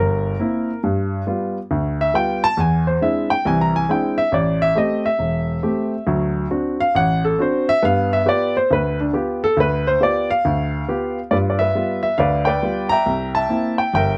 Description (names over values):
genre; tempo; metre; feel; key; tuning
solo jazz; 137 BPM; 4/4; swing 66% on 8ths; G mixolydian; A4 = 440 Hz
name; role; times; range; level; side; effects
warm baby grand piano; solo; 0.0-14.2 s; E1 to Bb5; -19 LUFS; equal; none
room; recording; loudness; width
light reverb; close, detailed microphones; -19 LUFS; mono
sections
0.0-11.3 A section; 11.3-14.2 B section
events
grand piano solo 0.0-11.3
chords
0.0 C7; 0.8 G7; 2.6 Eaug7; 4.3 Am7; 6.1 D7; 7.8 G7; 13.1 C7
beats
0.39 | 0.82 1.26 1.70 2.14 | 2.57 3.01 3.45 3.88 | 4.32 4.76 5.20 5.63 | 6.07 6.51 6.94 7.38 | 7.82 8.25 8.69 9.13 | 9.56 10.00 10.44 10.87 | 11.31 11.74 12.18 12.62 | 13.05 13.49 13.92